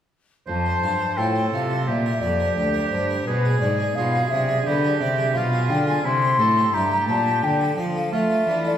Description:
classical, baroque-style sonata movement with continuo; 86 BPM; 4/4; straight; F major; A4 = 440 Hz
mellow hollow concert flute; melody; 0.5-8.8 s; B4 to C6; -23 LUFS; left 3 dB
clear oboe; second line; 0.5-8.8 s; E4 to C5; -28 LUFS; right 5 dB
harpsichord; accompaniment; 0.5-8.8 s; D2 to F5; -28 LUFS; equal
rich cello; bass; 0.5-8.8 s; D2 to A3; -24 LUFS; right 1 dB
wet recital hall reverb, RT60 1.6 s; heard from further back in the room; -19 LUFS; side -10 dB against mid
0.5-8.8 A section
0.5 F; 1.9 Gm; 3.3 Bdim7; 6.0 C; 7.4 Dm

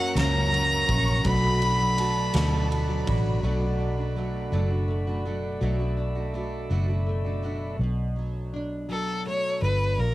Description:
six-eight pop ballad; 55 BPM (dotted quarters); 6/8; straight; B minor; A4 = 440 Hz
bright violin; melody; 0.0-3.1, 8.9-10.1 s; A4 to B5; -27 LUFS; equal; tape echo
warm symphonic violin section; second line; 0.0-3.4 s; A5 to C#6; -36 LUFS; equal; cassette tape
nylon-string guitar; accompaniment; 0.0-10.1 s; F#2 to F#4; -32 LUFS; equal; double-tracked left and right, cassette tape
mellow tonewheel organ; sustained chords; 0.0-7.8 s; A4 to C#6; -34 LUFS; equal; slow rotary speaker, cassette tape
picked steel-string acoustic guitar; arpeggios; 0.0-7.8 s; F#2 to F#4; -35 LUFS; right 3 dB; cassette tape
vintage muted fingered electric bass; bass; 0.0-10.1 s; F#1 to F#2; -26 LUFS; equal
huge arena drum kit; drums; 0.2-3.2 s; kick drum, ride cymbal, snare drum; -33 LUFS; equal; cassette tape
light reverb; home recording on cassette; -23 LUFS; side -16 dB against mid
0.0-3.4 A section; 3.4-7.8 B section; 7.8-10.1 C section
0.0 F#; 1.2 Bm7

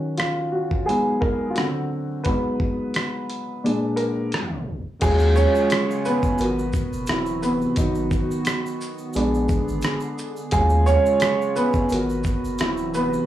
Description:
lo-fi hip hop; 87 BPM; 4/4; swing 55% on 16ths; Eb minor; A4 = 441 Hz
warm upright piano; accompaniment; 0.0-13.3 s; Ab2 to Db5; -22 LUFS; equal; cassette tape, low-pass filter
dusty soul sampler-style drum kit; drums; 0.2-13.1 s; crash cymbal, hi-hat, kick drum, rim click, shaker; -25 LUFS; equal
hollow soft pad; sustained chords; 5.4-13.3 s; Cb3 to Ab4; -29 LUFS; right 2 dB; chorus, low-pass filter
soft dub sub bass; bass; 5.0-13.2 s; D1 to Eb2; -24 LUFS; equal; transformer saturation
tube shaker; percussion; 5.0-13.3 s; -45 LUFS; right 3 dB
light reverb; dry, gritty hardware recording, transformer saturation, tape stop, studio reverb; -20 LUFS; side -12 dB against mid
0.0-5.0 A section; 5.0-13.3 B section
upright piano solo 0.0-5.0, 5.0-13.3; filter sweep on upright piano 0.0-5.0; kick muted 3.6-5.0; tape stop 4.3-5.0
0.0 Ebm7; 0.9 Abm7; 1.6 D7; 2.3 Abm7; 3.6 Bb7; 5.0 Ebm11; 6.4 Abm9; 7.1 D9; 7.8 Abm7; 9.1 Bb7b9; 10.5 Ebm11; 11.9 Abm9; 12.6 D9

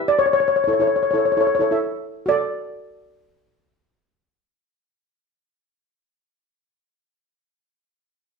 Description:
calypso; 129 BPM; 4/4; straight; D major; A4 = 440 Hz
steel pan; melody; 0.0-6.6 s; C#5 to E5; -18 LUFS; left 3 dB
steel pan; accompaniment; 0.0-6.6 s; E4 to E5; -24 LUFS; right 3 dB
moderate large studio reverb, RT60 0.9 s; band playing live in one room; -17 LUFS; side -4 dB against mid
0.0-2.3 A section; 2.3-6.0 B section
0.4 A; 2.3 D

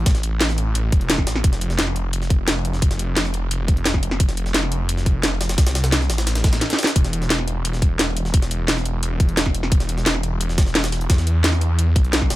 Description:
dark technical drum and bass; 174 BPM; 4/4; straight; A4 = 438 Hz
snarling distorted saw bass; bass; 0.0-12.4 s; E1 to E2; -21 LUFS; equal; distortion, overdrive, sidechain pumping
drum and bass drum kit; drums; 0.1-12.4 s; hi-hat, snare drum; -22 LUFS; equal
electronic kick drum; drums; 0.1-12.3 s; -17 LUFS; equal
jungle sampler-style drum kit; drums; 0.1-12.4 s; hi-hat, snare drum; -28 LUFS; equal; high-pass filter on snare, high-pass filter on hats
little or no reverb; -17 LUFS; side -16 dB against mid
0.0-12.4 A section
drum fill 6.6-7.0

